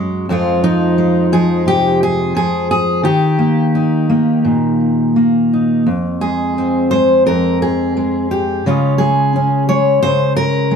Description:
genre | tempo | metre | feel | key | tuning
folk, solo fingerstyle acoustic guitar | 86 BPM | 4/4 | rubato | unclear | A4 = 441 Hz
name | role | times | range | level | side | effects
fingerpicked steel-string acoustic guitar | solo | 0.0-10.8 s | F2 to Db5 | -12 LUFS | equal | tape echo
room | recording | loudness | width
moderate studio reverb, RT60 0.6 s | none | -12 LUFS | side -6 dB against mid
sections
0.0-10.8 A section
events
none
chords
0.3 Fm; 3.0 Eb; 5.9 Fm; 8.6 Db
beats
| 0.29 0.97 1.66 2.35 | 3.04 3.74 4.44 5.15 | 5.86 6.56 7.26 7.96 | 8.65 9.33 10.02 10.70

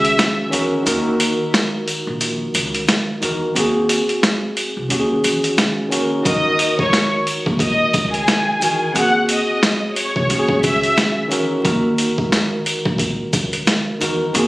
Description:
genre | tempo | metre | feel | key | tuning
hip hop, boom-bap hip-hop | 89 BPM | 4/4 | swing 58% on 16ths | Eb dorian | A4 = 441 Hz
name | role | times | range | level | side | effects
warm studio violin section | melody | 0.0-0.4, 6.2-11.1 s | Ab4 to Gb6 | -19 LUFS | equal | high-pass filter, low-pass filter, ping-pong delay
tine electric piano | accompaniment | 0.0-14.5 s | Eb3 to Bb4 | -20 LUFS | equal | medium stereo tremolo, high-pass filter, low-pass filter
upright bass | bass | 0.0-14.5 s | Bb1 to Eb3 | -24 LUFS | equal | none
boom bap sampler-style drum kit | drums | 0.0-14.5 s | hi-hat, kick drum, snare drum | -18 LUFS | equal | overdrive
sleigh bells | percussion | 0.2-14.5 s | none | -29 LUFS | equal | none
room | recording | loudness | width
moderate small room reverb, RT60 0.5 s | recorded on a phone in the room, studio reverb, vinyl crackle | -15 LUFS | side -19 dB against mid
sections
0.0-14.5 A section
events
break 0.0-6.3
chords
0.0 E6; 0.9 Ebm; 3.6 Ab7/Eb; 4.9 E6/Eb; 6.3 Ebm; 8.9 Ab7/Eb; 10.3 E6; 11.6 Ebm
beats
0.18 | 0.86 1.53 2.21 2.88 | 3.56 4.23 4.90 5.58 | 6.25 6.93 7.60 8.28 | 8.95 9.62 10.30 10.97 | 11.65 12.32 12.99 13.67 | 14.34

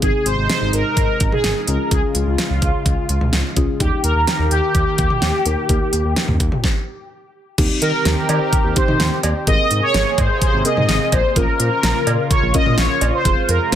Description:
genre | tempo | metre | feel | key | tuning
synth-pop | 127 BPM | 4/4 | straight | unclear | A4 = 439 Hz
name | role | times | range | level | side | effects
mellow synth brass | melody | 0.0-13.8 s | F4 to Eb5 | -20 LUFS | equal | chorus, phaser, digital delay
muted felt-like synth keys | accompaniment | 0.0-13.8 s | Bb3 to Bb4 | -25 LUFS | left 3 dB | chorus
warm analog pad | sustained chords | 0.0-13.8 s | C3 to Ab4 | -26 LUFS | right 2 dB | chorus
smooth synth bass | bass | 0.0-13.8 s | F1 to Eb3 | -21 LUFS | equal | none
pop drum kit | drums | 0.0-13.8 s | cowbell, crash cymbal, hi-hat, kick drum, snare drum, toms | -19 LUFS | equal | none
room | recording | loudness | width
light reverb | dense, heavily limited modern master | -15 LUFS | side -10 dB against mid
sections
0.0-7.6 A section; 7.6-13.8 B section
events
stop 6.6-7.6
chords
0.0 Ab; 1.7 Db; 3.8 Eb; 7.6 Eb6; 9.5 Abadd9; 11.4 Bbm; 13.3 Fm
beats
| 0.02 0.49 0.97 1.44 | 1.91 2.38 2.86 3.33 | 3.80 4.28 4.75 5.22 | 5.69 6.17 6.64 7.11 | 7.58 8.05 8.53 9.00 | 9.47 9.94 10.42 10.89 | 11.36 11.83 12.31 12.78 | 13.25 13.72

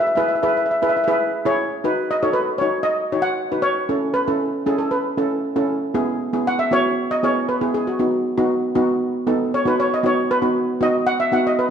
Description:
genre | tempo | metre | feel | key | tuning
calypso | 117 BPM | 4/4 | straight | unclear | A4 = 442 Hz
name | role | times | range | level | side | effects
steel pan | melody | 0.0-11.7 s | F#4 to F#5 | -20 LUFS | left 1 dB | none
steel pan | accompaniment | 0.0-11.6 s | B3 to C#5 | -20 LUFS | right 1 dB | none
room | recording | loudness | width
wet recital hall reverb, RT60 1.5 s | none | -18 LUFS | side -8 dB against mid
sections
0.0-1.8 A section; 1.8-11.7 B section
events
steel pan solo 1.8-11.7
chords
0.0 E; 1.8 Badd9; 3.9 Aadd9; 5.9 E; 8.0 B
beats
0.31 0.82 1.33 | 1.84 2.36 2.87 3.38 | 3.90 4.41 4.92 5.43 | 5.95 6.46 6.97 7.48 | 8.00 8.51 9.02 9.53 | 10.04 10.55 11.07 11.58

